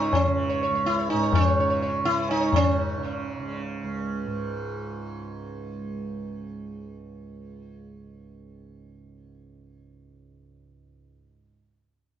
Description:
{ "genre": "indian classical, Hindustani", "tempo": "126 BPM", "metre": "4/4", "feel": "straight", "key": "unclear", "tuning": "A4 = 439 Hz", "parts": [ { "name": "sitar", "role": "melody", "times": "0.0-5.9 s", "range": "C#4 to C#5", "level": "-24 LUFS", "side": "right 1 dB", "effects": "plate reverb, tape echo" }, { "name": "tanpura", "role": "drone", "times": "0.0-11.4 s", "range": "C#2 to C#3", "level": "-32 LUFS", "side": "right 3 dB", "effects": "none" }, { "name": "tabla", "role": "percussion", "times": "0.1-2.7 s", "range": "none", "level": "-26 LUFS", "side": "left 3 dB", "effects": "none" } ], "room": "moderate small room reverb, RT60 0.5 s", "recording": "dark, warm production, nothing above 7.6 kHz", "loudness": "-24 LUFS", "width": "side -10 dB against mid", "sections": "0.0-2.5 A section; 2.5-4.4 B section", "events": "none", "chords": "none", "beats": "0.14 | 0.62 1.10 1.58 2.06 | 2.54 3.01 3.49 3.96" }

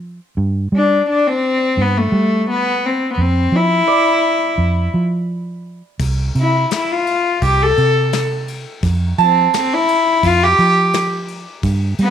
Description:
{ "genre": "acoustic folk-pop ballad", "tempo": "85 BPM", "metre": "4/4", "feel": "straight", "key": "unclear", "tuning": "A4 = 442 Hz", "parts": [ { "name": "vintage muted fingered electric bass", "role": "bass", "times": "0.0-12.1 s", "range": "C2 to G3", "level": "-17 LUFS", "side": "right 2 dB", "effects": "none" }, { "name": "warm cello", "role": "melody", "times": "0.8-12.1 s", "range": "A3 to A4", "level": "-15 LUFS", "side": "left 2 dB", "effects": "none" }, { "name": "concert harp", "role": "arpeggios", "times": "3.9-11.2 s", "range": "D5 to A5", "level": "-17 LUFS", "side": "right 16 dB", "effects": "none" }, { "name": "soft brush drum kit", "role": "drums", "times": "6.0-12.1 s", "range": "kick drum, ride cymbal, snare drum", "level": "-26 LUFS", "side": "left 5 dB", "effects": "none" } ], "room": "moderate spring reverb, RT60 1.7 s, small room ambience", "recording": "1960s-style stereo", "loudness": "-13 LUFS", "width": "side -9 dB against mid", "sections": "0.0-12.1 A section", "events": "none", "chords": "0.4 Gadd11; 3.2 Dmadd9/F; 6.0 N.C.; 8.8 F", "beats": "| 0.37 1.08 1.78 2.48 | 3.18 3.88 4.58 5.29 | 6.00 6.71 7.42 8.13 | 8.83 9.53 10.23 10.94 | 11.63" }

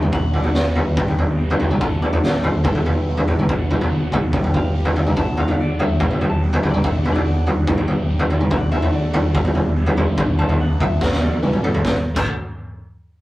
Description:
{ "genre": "indie rock", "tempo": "143 BPM", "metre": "4/4", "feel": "straight", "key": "D major", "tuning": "A4 = 441 Hz", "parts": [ { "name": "electric guitar through a small old amp", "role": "melody", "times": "0.0-11.8 s", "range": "A4 to A5", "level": "-30 LUFS", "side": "equal", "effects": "digital delay" }, { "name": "overdriven combo organ", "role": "sustained chords", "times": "0.0-12.0 s", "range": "D3 to G4", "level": "-37 LUFS", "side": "right 1 dB", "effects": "none" }, { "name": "overdriven electric guitar", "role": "riff", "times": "0.0-12.3 s", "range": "E3 to A4", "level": "-30 LUFS", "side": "equal", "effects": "phaser" }, { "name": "fuzz fingered electric bass", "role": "bass", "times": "0.0-12.4 s", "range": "E1 to A2", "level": "-31 LUFS", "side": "equal", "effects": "none" }, { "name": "raw garage drum kit", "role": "drums", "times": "0.0-12.3 s", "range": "crash cymbal, kick drum, snare drum, toms", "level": "-17 LUFS", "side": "equal", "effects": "none" } ], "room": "little or no reverb", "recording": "rough rehearsal-room recording, tube saturation", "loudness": "-16 LUFS", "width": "side -17 dB against mid", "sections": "0.0-11.9 A section; 11.9-13.2 B section", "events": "drum fill 11.0-11.9", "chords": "0.1 Bm; 1.0 G6; 1.8 D; 2.6 Em7; 3.5 Bm; 4.3 G6; 5.2 D; 6.0 Em7; 6.8 Bm; 7.7 G6; 8.5 D; 9.3 Em7; 10.2 Bm; 11.0 Dadd9", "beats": "| 0.13 0.55 0.97 1.39 | 1.81 2.23 2.65 3.07 | 3.49 3.91 4.33 4.75 | 5.17 5.58 6.00 6.42 | 6.84 7.26 7.68 8.10 | 8.51 8.93 9.35 9.77 | 10.18 10.60 11.02 11.43 | 11.85 12.27" }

